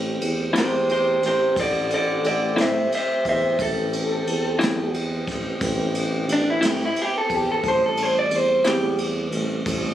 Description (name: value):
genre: slow blues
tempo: 59 BPM (dotted quarters)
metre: 12/8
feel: straight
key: A minor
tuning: A4 = 440 Hz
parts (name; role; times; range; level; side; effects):
- mellow tonewheel organ; sustained chords; 0.0-9.9 s; G3 to G4; -31 LUFS; right 1 dB; slow rotary speaker
- mellow tuba; bass; 0.0-9.9 s; A1 to A2; -27 LUFS; right 1 dB; none
- jazz brush drum kit; drums; 0.2-9.8 s; kick drum, ride cymbal, snare drum; -29 LUFS; right 1 dB; none
- electric guitar through a small old amp; accompaniment; 0.5-8.9 s; A2 to E4; -23 LUFS; left 2 dB; tremolo
- electric guitar through a small old amp; melody; 0.6-9.0 s; D4 to E5; -21 LUFS; equal; none
room: little or no reverb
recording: recorded on a phone in the room, studio reverb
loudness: -20 LUFS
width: side -11 dB against mid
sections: 0.0-9.9 A section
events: clean electric guitar solo 0.0-9.9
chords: 0.0 Am7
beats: 0.54 1.55 2.57 | 3.58 4.59 5.60 6.62 | 7.63 8.64 9.66